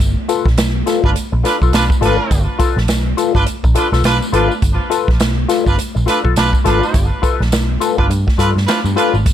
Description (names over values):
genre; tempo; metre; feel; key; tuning
funk; 104 BPM; 4/4; swing 60% on 16ths; G mixolydian; A4 = 440 Hz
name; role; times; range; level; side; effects
vintage muted picked electric bass; bass; 0.0-9.3 s; G1 to G2; -16 LUFS; equal; none
swinging big-band drum kit; drums; 0.0-9.3 s; hi-hat, kick drum, snare drum; -17 LUFS; right 1 dB; none
tambourine; percussion; 0.0-9.3 s; none; -31 LUFS; left 4 dB; none
mellow electric guitar; accompaniment; 0.3-9.2 s; F4 to B4; -18 LUFS; left 9 dB; wah, analog chorus
warm horn section; second line; 1.0-9.2 s; D4 to B4; -19 LUFS; right 2 dB; tape echo
room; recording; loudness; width
little or no reverb; none; -12 LUFS; side -10 dB against mid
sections
0.0-9.3 A section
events
none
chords
0.0 G9